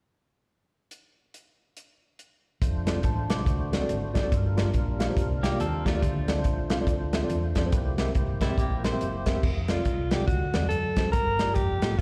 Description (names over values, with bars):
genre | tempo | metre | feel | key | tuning
uptempo gospel | 141 BPM | 4/4 | swing 60% on 8ths | F major | A4 = 438 Hz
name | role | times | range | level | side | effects
warm soul drum kit | drums | 0.9-12.0 s | crash cymbal, hi-hat, kick drum, snare drum | -29 LUFS | equal | slapback echo
tonewheel organ | sustained chords | 2.6-9.4 s | G3 to C5 | -38 LUFS | equal | slow rotary speaker, overdrive, chorus vibrato, plate reverb
hollow-body short-scale fingered electric bass | bass | 2.6-12.0 s | F1 to F#2 | -32 LUFS | equal | none
mellow tine electric piano | accompaniment | 2.9-11.9 s | G2 to D6 | -33 LUFS | equal | plate reverb, slapback echo
clean electric guitar | second line | 5.4-9.4 s | G3 to C5 | -38 LUFS | equal | plate reverb, slapback echo
breathy alto saxophone | melody | 9.7-12.0 s | F4 to Bb4 | -30 LUFS | equal | plate reverb, slapback echo
room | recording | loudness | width
light reverb | live gig heard through the venue's PA, recital hall reverb | -26 LUFS | mono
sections
0.9-2.6 A section; 2.6-9.4 B section; 9.4-12.0 C section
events
none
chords
0.9 N.C.; 2.6 F6; 3.5 D7; 4.3 Gm7; 6.0 Dm7; 7.7 C7; 9.4 F6; 10.3 D7; 11.1 Gm7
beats
| 0.91 1.33 1.76 2.19 | 2.62 3.04 3.47 3.90 | 4.32 4.75 5.17 5.60 | 6.03 6.45 6.88 7.30 | 7.73 8.15 8.58 9.01 | 9.43 9.86 10.28 10.71 | 11.14 11.56 11.99